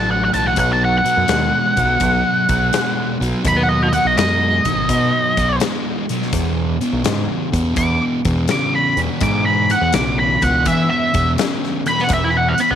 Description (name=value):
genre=blues rock power trio and southern rock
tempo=83 BPM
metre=4/4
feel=swing 67% on 8ths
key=B mixolydian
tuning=A4 = 438 Hz
part: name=octave-fuzz lead guitar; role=melody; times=0.0-12.8 s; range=D#5 to D6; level=-17 LUFS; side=right 1 dB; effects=wah, distortion
part: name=sludgy distorted guitar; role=riff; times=0.0-12.8 s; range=E2 to G#3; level=-20 LUFS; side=equal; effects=overdrive
part: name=growling fingered electric bass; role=bass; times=0.0-12.8 s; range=G#1 to E3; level=-21 LUFS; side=equal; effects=overdrive
part: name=huge arena drum kit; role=drums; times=0.3-12.7 s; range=hi-hat, kick drum, snare drum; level=-24 LUFS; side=left 4 dB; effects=none
room=light reverb, small room reverb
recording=1960s-style stereo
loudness=-15 LUFS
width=side -9 dB against mid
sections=0.0-12.8 A section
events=lead electric guitar solo 0.0-12.8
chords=0.0 A5; 0.6 B; 6.3 E5